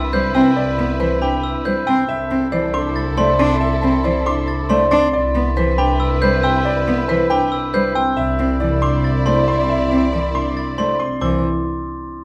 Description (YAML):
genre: classical, minimalist pattern music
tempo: 276 BPM (eighths)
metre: 7/8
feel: straight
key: C major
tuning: A4 = 441 Hz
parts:
  - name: rich studio string section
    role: sustained chords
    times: 0.0-11.0 s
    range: E4 to D5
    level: -29 LUFS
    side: equal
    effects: none
  - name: glockenspiel with brass mallets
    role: arpeggios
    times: 0.0-11.4 s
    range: B5 to A6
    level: -27 LUFS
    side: equal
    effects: none
  - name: rich symphonic double bass section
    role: bass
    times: 0.0-11.4 s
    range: C2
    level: -24 LUFS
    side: equal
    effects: none
  - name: bright concert grand piano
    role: melody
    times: 0.1-11.4 s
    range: B4 to C6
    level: -25 LUFS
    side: equal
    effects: none
  - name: rich cello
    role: accompaniment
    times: 0.1-11.4 s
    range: E3 to D4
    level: -23 LUFS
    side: equal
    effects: none
  - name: marimba with hard mallets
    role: arpeggios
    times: 0.1-11.4 s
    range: C4 to D5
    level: -24 LUFS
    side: equal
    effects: none
room: moderate recital hall reverb, RT60 1.4 s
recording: none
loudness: -18 LUFS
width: mono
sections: 0.0-11.2 A section; 11.2-12.2 B section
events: none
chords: 0.0 Cmaj7; 2.1 Dsus2/C; 5.1 Cmaj7; 8.2 Dsus2/C; 11.2 C